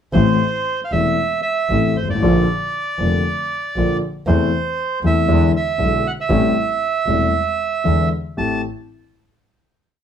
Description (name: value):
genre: tango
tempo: 117 BPM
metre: 4/4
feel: rubato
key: A phrygian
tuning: A4 = 437 Hz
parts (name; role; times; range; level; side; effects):
- bandoneon; melody; 0.1-8.6 s; C5 to A5; -20 LUFS; right 5 dB; none
- warm grand piano; accompaniment; 0.1-8.6 s; E1 to G4; -19 LUFS; left 4 dB; none
- clear double bass; bass; 0.1-8.6 s; E1 to E2; -20 LUFS; right 1 dB; none
room: wet studio reverb, RT60 0.5 s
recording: heard from further back in the room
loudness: -16 LUFS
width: side -8 dB against mid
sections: 0.1-8.4 A section; 8.4-10.0 final chord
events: none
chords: 0.1 Am; 2.2 Bb; 4.3 Am/E; 5.3 E7; 6.3 Am7; 7.9 E7; 8.4 Am7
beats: | 0.14 0.66 1.18 1.70 | 2.22 2.73 3.25 3.76 | 4.26 4.78 5.28 5.79 | 6.30 6.81 7.33 7.85 | 8.37